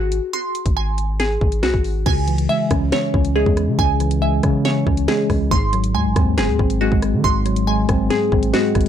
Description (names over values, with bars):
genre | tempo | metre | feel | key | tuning
hip hop, drill | 139 BPM | 4/4 | half-time | C# harmonic minor | A4 = 441 Hz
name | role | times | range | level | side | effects
glassy wavetable pluck | arpeggios | 0.0-8.9 s | F#4 to B#5 | -22 LUFS | equal | chorus, analog delay
long sustained 808-style bass | bass | 0.0-8.9 s | F#1 to D#3 | -21 LUFS | equal | none
drill drum kit | drums | 0.1-8.9 s | crash cymbal, finger snaps, hi-hat, kick drum, rim click, snare drum | -21 LUFS | equal | vintage 12-bit sampler grit, analog delay
mellow tine electric piano | accompaniment | 2.1-8.9 s | G#2 to C#4 | -20 LUFS | left 1 dB | medium stereo tremolo
room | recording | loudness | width
digital ambience | echo-heavy mix | -16 LUFS | side -9 dB against mid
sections
0.0-2.1 A section; 2.1-8.9 B section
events
none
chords
0.0 G#7; 2.1 C#m; 5.5 G#7